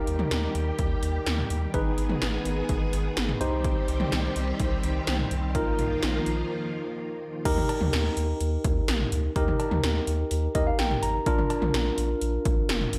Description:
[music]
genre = synth-pop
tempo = 126 BPM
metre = 4/4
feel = straight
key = Eb major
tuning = A4 = 440 Hz
[part]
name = barky tine electric piano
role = accompaniment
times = 0.0-13.0 s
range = D4 to Bb5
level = -32 LUFS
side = equal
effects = none
[part]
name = string machine, full ensemble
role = sustained chords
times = 0.0-7.4 s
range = Eb3 to Ab4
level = -35 LUFS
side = equal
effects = ensemble chorus
[part]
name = round analog bass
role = bass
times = 0.1-13.0 s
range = F1 to Eb2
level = -31 LUFS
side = equal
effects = none
[part]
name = 80s electronic pad drums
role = drums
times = 0.1-13.0 s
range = cowbell, crash cymbal, hi-hat, kick drum, snare drum, toms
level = -31 LUFS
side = equal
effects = gated reverb on snare and toms
[sound]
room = light reverb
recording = none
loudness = -27 LUFS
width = mono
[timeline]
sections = 0.0-7.5 A section; 7.5-13.0 B section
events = break 6.5-7.5; tine electric piano fill 10.3-11.3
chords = 0.0 Eb; 1.7 Abm; 3.4 Cm; 5.5 Bbsus4; 7.5 Eb; 11.3 Bb

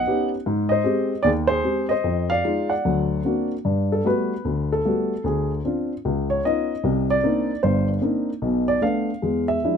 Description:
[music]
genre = solo jazz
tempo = 151 BPM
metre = 4/4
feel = swing 65% on 8ths, rubato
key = unclear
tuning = A4 = 440 Hz
[part]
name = dark baby grand piano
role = solo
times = 0.0-9.8 s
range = G1 to F#5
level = -20 LUFS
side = equal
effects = none
[sound]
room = little or no reverb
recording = close, detailed microphones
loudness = -20 LUFS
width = side -7 dB against mid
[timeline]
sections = 0.0-3.7 A section; 3.7-9.8 B section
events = grand piano solo 3.7-9.8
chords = 0.5 Abmaj7; 2.0 Fm7; 2.8 Daug7; 3.7 Gmaj9; 5.3 Dm7b5; 6.0 C#9; 6.8 Cm9; 8.4 Bm7b5; 9.2 E7b9

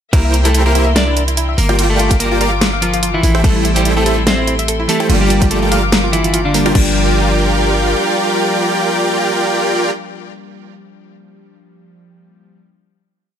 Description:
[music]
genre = future bass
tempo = 145 BPM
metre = 4/4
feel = swing 55% on 16ths, half-time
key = G dorian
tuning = A4 = 440 Hz
[part]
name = electric guitar at the edge of break-up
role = melody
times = 0.1-9.9 s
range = D3 to D5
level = -20 LUFS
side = equal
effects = sidechain pumping, digital delay
[part]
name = rich chamber string section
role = sustained chords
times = 0.1-9.9 s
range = G3 to D6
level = -24 LUFS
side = left 2 dB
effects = sidechain pumping
[part]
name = soft round pluck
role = arpeggios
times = 0.1-6.9 s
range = E4 to F5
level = -23 LUFS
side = left 2 dB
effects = chorus, sidechain pumping, ping-pong delay
[part]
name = dense compressed supersaw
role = riff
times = 0.1-9.9 s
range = E4 to G5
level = -16 LUFS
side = right 1 dB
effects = sidechain pumping, ping-pong delay
[part]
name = warm 808-style bass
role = bass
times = 0.1-8.0 s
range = G1 to C2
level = -16 LUFS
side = equal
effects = sidechain pumping
[part]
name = dubstep drum kit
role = drums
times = 0.1-6.8 s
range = crash cymbal, hi-hat, snare drum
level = -19 LUFS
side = equal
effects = none
[part]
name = electronic kick drum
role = drums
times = 0.1-6.8 s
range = none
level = -13 LUFS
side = equal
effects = none
[part]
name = glassy digital keys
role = accompaniment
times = 3.4-12.6 s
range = E3 to G4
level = -22 LUFS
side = left 1 dB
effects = chorus, sidechain pumping, ping-pong delay
[sound]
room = light reverb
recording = none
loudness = -12 LUFS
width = side -9 dB against mid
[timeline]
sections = 0.1-6.8 drop; 6.8-10.1 final chord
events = drop 0.1-6.8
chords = 0.1 C7; 1.6 Gm7; 3.2 Am7; 5.1 Gm7

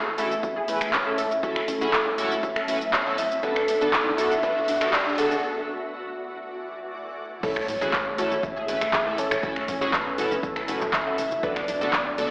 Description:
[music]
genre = progressive house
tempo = 120 BPM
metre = 4/4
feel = straight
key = A major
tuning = A4 = 439 Hz
[part]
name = soft octave-layered synth lead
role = melody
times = 0.0-12.3 s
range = A4 to F#5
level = -27 LUFS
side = equal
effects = chorus, phaser, digital delay
[part]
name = shimmering ambient pad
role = sustained chords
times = 0.0-12.3 s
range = D2 to G#5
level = -35 LUFS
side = equal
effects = chorus, built-in reverb, sidechain pumping
[part]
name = riser and impact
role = sound effects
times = 2.2-9.4 s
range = none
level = -36 LUFS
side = equal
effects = none
[part]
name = wide unison pluck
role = arpeggios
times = 0.1-12.3 s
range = A3 to B4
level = -31 LUFS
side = equal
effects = ensemble chorus, sidechain pumping, digital delay
[part]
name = chorused polysynth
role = stabs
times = 0.2-12.3 s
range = A3 to B4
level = -29 LUFS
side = equal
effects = sidechain pumping, digital delay
[part]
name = house drum kit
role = drums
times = 0.2-12.3 s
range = crash cymbal, finger snaps, handclaps, hi-hat, shaker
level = -26 LUFS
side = equal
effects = overdrive
[part]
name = electronic kick drum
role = drums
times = 0.4-12.0 s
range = none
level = -35 LUFS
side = equal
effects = high-pass filter on kick
[part]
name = tight sequencer bass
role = bass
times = 7.6-12.3 s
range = D1 to A2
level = -38 LUFS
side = equal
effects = sidechain pumping
[sound]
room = wet lush hall reverb, RT60 1.7 s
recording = played on a big sound system in a bare room, large studio reverb, high-pass filter, AM radio sound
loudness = -22 LUFS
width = side -29 dB against mid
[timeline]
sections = 0.0-7.4 A section; 7.4-12.3 B section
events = build-up 0.0-7.4; filter sweep 0.0-7.4; riser 2.2-5.4; break 5.4-7.4; drop 7.4-12.3; impact 7.4-9.4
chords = 0.0 A; 1.4 F#m7; 3.4 D6; 5.4 E7sus4; 7.4 A; 11.4 D6

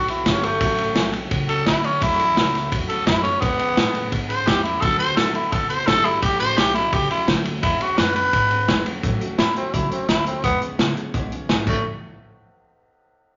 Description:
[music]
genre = rockabilly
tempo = 171 BPM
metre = 4/4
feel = straight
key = A major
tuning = A4 = 444 Hz
[part]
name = growling tenor saxophone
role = melody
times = 0.0-11.8 s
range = A3 to C5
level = -23 LUFS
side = equal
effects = none
[part]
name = picked steel-string acoustic guitar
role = accompaniment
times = 0.0-11.8 s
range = A2 to A4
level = -33 LUFS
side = equal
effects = none
[part]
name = upright bass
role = bass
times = 0.0-11.8 s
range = F#1 to A2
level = -33 LUFS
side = equal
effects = none
[part]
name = vintage drum kit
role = drums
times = 0.1-11.8 s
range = crash cymbal, hi-hat, kick drum, ride cymbal, snare drum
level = -24 LUFS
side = equal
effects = none
[sound]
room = moderate large studio reverb, RT60 1.1 s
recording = nothing above 7.4 kHz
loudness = -20 LUFS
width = mono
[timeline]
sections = 0.0-9.0 A section; 9.0-11.8 B section; 11.8-13.3 C section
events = none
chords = 0.0 D6; 0.6 A6; 3.4 E6; 4.8 D6; 6.2 A6; 7.6 E6; 9.0 A6; 10.4 E6; 11.7 A6; 11.8 N.C.

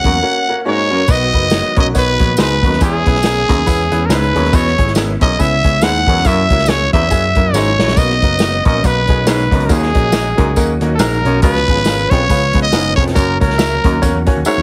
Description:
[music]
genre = uptempo 1960s-style soul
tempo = 139 BPM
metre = 4/4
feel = swing 58% on 8ths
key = B major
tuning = A4 = 440 Hz
[part]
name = growling trumpet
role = melody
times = 0.0-14.6 s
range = G#4 to F#5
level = -18 LUFS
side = equal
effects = none
[part]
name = tonewheel organ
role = sustained chords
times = 0.0-14.6 s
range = E#3 to F#4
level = -29 LUFS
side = equal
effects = none
[part]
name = vintage muted picked electric bass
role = bass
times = 0.0-14.6 s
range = E#1 to F#2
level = -20 LUFS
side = equal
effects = none
[part]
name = vintage drum kit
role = drums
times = 0.0-14.4 s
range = crash cymbal, hi-hat, kick drum, snare drum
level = -19 LUFS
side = equal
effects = none
[part]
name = bright upright piano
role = accompaniment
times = 0.1-14.6 s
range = A#3 to C#6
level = -24 LUFS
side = equal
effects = none
[part]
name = warm baritone saxophone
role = riff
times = 0.1-14.6 s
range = D#2 to B2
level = -22 LUFS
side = equal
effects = none
[part]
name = tambourine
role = percussion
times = 1.1-14.6 s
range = none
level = -31 LUFS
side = equal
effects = none
[sound]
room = little or no reverb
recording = heavily compressed radio sound, multiband compression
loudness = -14 LUFS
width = mono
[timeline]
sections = 0.0-1.1 A section; 1.1-14.6 B section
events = break 0.2-1.1; upright piano fill 0.4-1.1, 14.0-14.6; drum fill 7.5-8.0, 14.4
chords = 0.0 F#; 1.1 Bmaj7; 2.8 E6; 4.5 C#m7; 6.2 F#7; 8.0 Bmaj7; 9.7 D#m7; 11.4 C#7; 13.2 F#

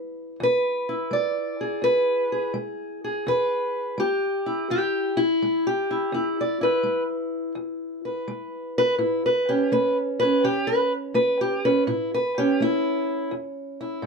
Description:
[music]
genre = acoustic country blues, solo or duo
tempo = 84 BPM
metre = 4/4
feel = swing 68% on 8ths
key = E major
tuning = A4 = 439 Hz
[part]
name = fingerpicked steel-string acoustic guitar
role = solo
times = 0.0-14.1 s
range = E2 to D5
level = -22 LUFS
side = equal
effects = none
[sound]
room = moderate studio reverb, RT60 0.6 s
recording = none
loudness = -22 LUFS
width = side -4 dB against mid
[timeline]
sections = 0.0-14.1 A section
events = steel-string acoustic guitar solo 0.0-14.1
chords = 0.0 E; 9.0 A

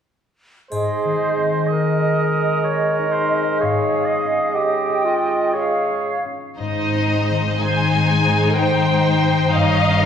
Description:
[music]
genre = classical, slow romantic movement for symphony orchestra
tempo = 61 BPM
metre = 3/4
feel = uneven beats, rubato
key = Ab major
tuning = A4 = 441 Hz
[part]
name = bright clarinet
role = second line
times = 0.7-6.2 s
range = F4 to Bb4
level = -25 LUFS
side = right 2 dB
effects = none
[part]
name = small flute group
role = second line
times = 0.7-6.2 s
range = Eb5 to G5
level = -25 LUFS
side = right 1 dB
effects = none
[part]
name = warm oboe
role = second line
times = 0.7-6.2 s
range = C5 to Eb5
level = -24 LUFS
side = right 4 dB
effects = none
[part]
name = warm bassoon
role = accompaniment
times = 0.7-6.2 s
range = Ab3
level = -23 LUFS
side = right 2 dB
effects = none
[part]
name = concert harp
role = arpeggios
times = 0.7-10.1 s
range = G2 to F5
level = -23 LUFS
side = left 5 dB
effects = none
[part]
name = triangle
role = percussion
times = 0.7-2.6 s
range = none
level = -45 LUFS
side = left 2 dB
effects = none
[part]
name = rich studio violin section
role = melody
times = 6.6-10.1 s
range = Eb5 to Ab5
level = -21 LUFS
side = left 4 dB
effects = none
[part]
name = rich studio violin section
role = second line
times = 6.6-10.1 s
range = Eb4 to Db5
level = -23 LUFS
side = left 1 dB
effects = none
[part]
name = rich studio cello section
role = bass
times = 6.6-10.1 s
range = G2 to Ab2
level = -24 LUFS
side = right 3 dB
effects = none
[part]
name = warm symphonic double bass section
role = bass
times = 6.6-10.1 s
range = G1 to Ab1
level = -25 LUFS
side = right 1 dB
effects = none
[part]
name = warm studio viola section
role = accompaniment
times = 7.6-10.1 s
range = Ab4 to Eb5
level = -22 LUFS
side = right 2 dB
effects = none
[sound]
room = wet recital hall reverb, RT60 1.7 s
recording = recorded in a church or concert hall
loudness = -16 LUFS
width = side -8 dB against mid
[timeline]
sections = 0.7-6.6 A section; 6.6-10.1 B section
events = none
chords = 0.7 Ab; 3.6 Db/Ab; 6.6 Ab; 9.5 Eb7/G

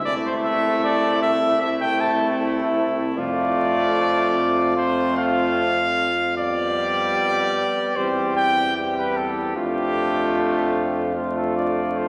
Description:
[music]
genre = classical, brass quintet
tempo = 76 BPM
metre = 4/4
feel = rubato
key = A minor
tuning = A4 = 441 Hz
[part]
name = mellow trumpet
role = melody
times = 0.0-12.1 s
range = F4 to A5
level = -25 LUFS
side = equal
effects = none
[part]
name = warm flugelhorn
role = second line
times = 0.1-12.1 s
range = E4 to G4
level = -28 LUFS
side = equal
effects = none
[part]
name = bright trombone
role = accompaniment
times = 0.1-12.1 s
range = G3 to A3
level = -30 LUFS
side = equal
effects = none
[part]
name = mellow French horn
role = accompaniment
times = 0.1-12.1 s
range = B3 to D4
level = -32 LUFS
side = equal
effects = none
[part]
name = warm tuba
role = bass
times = 0.1-12.1 s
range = C2 to F2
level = -30 LUFS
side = equal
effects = none
[sound]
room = wet church reverb, RT60 3.4 s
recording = vinyl crackle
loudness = -21 LUFS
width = mono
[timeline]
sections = 0.0-12.1 A section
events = none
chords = 0.1 Am/C; 3.2 Dm7/F; 6.4 G7/F; 8.0 C/E; 9.6 Dm/F

